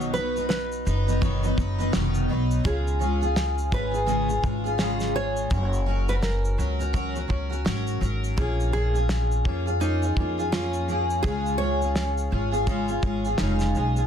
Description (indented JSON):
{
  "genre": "acoustic pop",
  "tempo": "84 BPM",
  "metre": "4/4",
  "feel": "swing 60% on 16ths",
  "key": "Db mixolydian",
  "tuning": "A4 = 439 Hz",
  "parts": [
    { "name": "nylon-string guitar", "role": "melody", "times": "0.0-14.1 s", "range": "Eb4 to Db5", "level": "-31 LUFS", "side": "right 2 dB", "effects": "digital delay" },
    { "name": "picked steel-string acoustic guitar", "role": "accompaniment", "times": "0.0-14.1 s", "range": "Cb3 to Cb5", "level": "-27 LUFS", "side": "left 1 dB", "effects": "double-tracked left and right" },
    { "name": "upright bass", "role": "bass", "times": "0.0-14.1 s", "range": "F1 to F2", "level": "-26 LUFS", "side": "equal", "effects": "none" },
    { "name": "cloth-damped thuddy drum kit", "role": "drums", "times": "0.0-14.1 s", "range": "kick drum, shaker, snare drum", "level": "-28 LUFS", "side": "equal", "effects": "none" }
  ],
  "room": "moderate studio reverb, RT60 0.5 s",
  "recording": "dense, heavily limited modern master",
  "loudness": "-22 LUFS",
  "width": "side -8 dB against mid",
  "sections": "0.0-14.1 A section",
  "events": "none",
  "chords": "0.0 Cb; 2.7 Db; 5.5 Gb; 8.4 Bbm7; 11.2 Db"
}